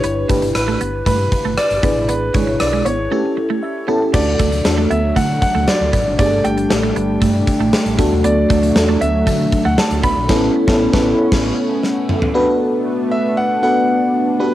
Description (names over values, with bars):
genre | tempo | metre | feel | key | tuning
1980s-style pop | 117 BPM | 4/4 | straight | B minor from 4.1 s | A4 = 440 Hz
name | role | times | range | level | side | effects
warm concert grand piano | melody | 0.0-14.5 s | B4 to B5 | -20 LUFS | equal | none
FM electric piano with soft pad layer | accompaniment | 0.0-14.5 s | A3 to A5 | -18 LUFS | left 1 dB | chorus, cassette tape
twelve-string electric guitar | riff | 0.0-10.1 s | G#3 to B3 | -24 LUFS | right 7 dB | analog chorus, cassette tape, tape echo
fingered electric bass | bass | 0.0-11.5 s | G1 to D3 | -22 LUFS | equal | tube saturation
gated 80s drum kit | drums | 0.0-12.3 s | crash cymbal, hi-hat, kick drum, rim click, snare drum, toms | -19 LUFS | equal | cassette tape
chorused pulse-width pad | sustained chords | 4.1-14.5 s | F#3 to F#5 | -22 LUFS | right 1 dB | cassette tape
room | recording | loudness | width
moderate spring reverb, RT60 1.8 s, small room ambience | home recording on cassette | -14 LUFS | side -13 dB against mid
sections
0.0-4.1 A section; 4.1-12.3 B section; 12.3-14.5 C section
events
FM electric piano fill 3.4-4.1, 10.8-12.3; band accent 10.3-12.3; drum fill 11.8-12.3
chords
0.0 G6; 1.8 E7/G#; 3.1 A7; 4.1 D; 6.2 Gsus2; 8.0 D; 10.3 Aadd9; 12.3 Bm7